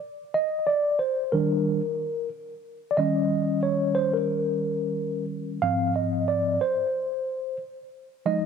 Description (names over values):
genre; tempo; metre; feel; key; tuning
hip hop; 91 BPM; 4/4; swing 57% on 16ths; Eb major; A4 = 440 Hz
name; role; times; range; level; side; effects
mellow tine electric piano; solo; 0.3-8.5 s; Ab2 to F5; -24 LUFS; equal; medium stereo tremolo, analog delay
room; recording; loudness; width
moderate echo chamber reverb, RT60 1.3 s; dark, warm production; -23 LUFS; side -6 dB against mid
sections
0.0-8.5 A section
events
tine electric piano solo 0.0-8.5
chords
0.4 Ebmaj7; 3.0 Eb7; 5.6 Ab6